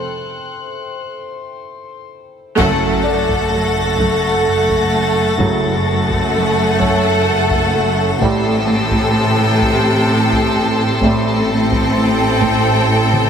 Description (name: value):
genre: cinematic, suspense film score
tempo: 64 BPM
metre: 3/4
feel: straight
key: F# phrygian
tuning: A4 = 440 Hz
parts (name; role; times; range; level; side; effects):
- felt-muted upright piano; texture; 0.0-13.3 s; C4 to D5; -29 LUFS; left 3 dB; none
- rich chamber violin section; texture; 0.0-13.3 s; A5 to A#6; -26 LUFS; left 2 dB; none
- rich studio violin section; melody; 2.6-13.3 s; F#5 to G5; -24 LUFS; left 3 dB; none
- rich chamber violin section; second line; 2.6-13.3 s; A4; -20 LUFS; left 1 dB; none
- rich chamber viola section; accompaniment; 2.6-13.3 s; C3 to C4; -20 LUFS; right 1 dB; none
- clear trombone section; sustained chords; 2.6-11.4 s; A2 to G3; -24 LUFS; right 3 dB; none
- icy glass pad; sustained chords; 2.9-13.3 s; A4 to C#6; -24 LUFS; equal; chorus, built-in reverb
- mellow French horn section; sustained chords; 2.6-11.4 s; C3 to C#4; -25 LUFS; left 3 dB; none
- warm symphonic cello section; riff; 2.6-13.2 s; F#2 to A3; -23 LUFS; equal; none
- clear chamber cello section; bass; 2.6-13.3 s; F#2 to A2; -20 LUFS; right 1 dB; none
- clear chamber double bass section; bass; 2.6-13.3 s; F#1 to A1; -23 LUFS; right 2 dB; none
- taiko ensemble; drums; 2.6-13.3 s; none; -24 LUFS; left 1 dB; none
- clash cymbals and concert bass drum; percussion; 2.6-4.4 s; none; -29 LUFS; left 1 dB; none
room: moderate scoring stage reverb, RT60 1.6 s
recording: heavily compressed radio sound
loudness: -13 LUFS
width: side -7 dB against mid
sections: 0.0-2.6 A section; 2.6-13.3 A section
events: break 0.0-2.6; drum fill 1.9-2.6, 13.1; band accent 2.6-3.5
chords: 0.0 N.C.; 2.6 F#m; 8.2 Am7